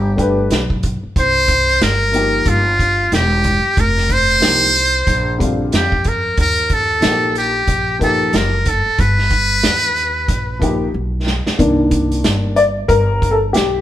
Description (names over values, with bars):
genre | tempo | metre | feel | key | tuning
hip hop, jazz-hop | 92 BPM | 4/4 | swing 60% on 16ths | C dorian | A4 = 440 Hz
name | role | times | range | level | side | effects
trumpet with metal mute | melody | 0.0-11.0 s | F4 to C5 | -15 LUFS | equal | none
upright bass | bass | 0.0-13.8 s | E1 to F2 | -20 LUFS | equal | none
dark upright piano | accompaniment | 0.2-13.8 s | D3 to D5 | -17 LUFS | left 2 dB | none
vintage drum kit | drums | 0.2-13.7 s | hi-hat, kick drum, snare drum | -19 LUFS | equal | none
room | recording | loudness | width
moderate stone room reverb, RT60 1.2 s | band playing live in one room | -13 LUFS | side -12 dB against mid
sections
0.0-11.6 A section; 11.6-13.8 B section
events
drum fill 10.9-11.6; upright piano solo 11.6-13.8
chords
0.0 G; 1.2 Cm7; 3.8 Fsus2; 5.1 Bb69; 6.4 Eb; 9.0 Gaug; 11.6 Cm9